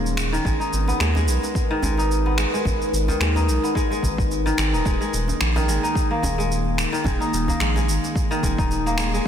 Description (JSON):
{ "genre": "organic downtempo", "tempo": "109 BPM", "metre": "4/4", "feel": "swing 56% on 16ths", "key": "unclear", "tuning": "A4 = 441 Hz", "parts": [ { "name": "warbly tape-like pad", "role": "sustained chords", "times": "0.0-9.3 s", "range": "D#3 to B4", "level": "-27 LUFS", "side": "left 1 dB", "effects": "chorus, built-in reverb, phaser, sidechain pumping" }, { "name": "kora", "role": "arpeggios", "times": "0.0-9.3 s", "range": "D#3 to D#4", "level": "-25 LUFS", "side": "equal", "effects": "tape echo" }, { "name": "round analog bass", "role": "bass", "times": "0.0-9.3 s", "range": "D#1 to D#2", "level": "-23 LUFS", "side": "equal", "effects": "sidechain pumping" }, { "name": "electronic cabasa and finger snaps", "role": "drums", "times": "0.1-9.2 s", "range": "none", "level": "-28 LUFS", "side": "right 1 dB", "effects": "overdrive, soft clipping on snare" }, { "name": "djembe", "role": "percussion", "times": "0.2-9.1 s", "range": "none", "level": "-33 LUFS", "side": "right 1 dB", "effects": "none" }, { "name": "electronic kick drum", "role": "drums", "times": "0.4-9.3 s", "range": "none", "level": "-24 LUFS", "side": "equal", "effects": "overdrive" } ], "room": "light reverb", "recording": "dense, heavily limited modern master", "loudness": "-19 LUFS", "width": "side -9 dB against mid", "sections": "0.0-9.3 A section", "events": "none", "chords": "0.5 G#madd9" }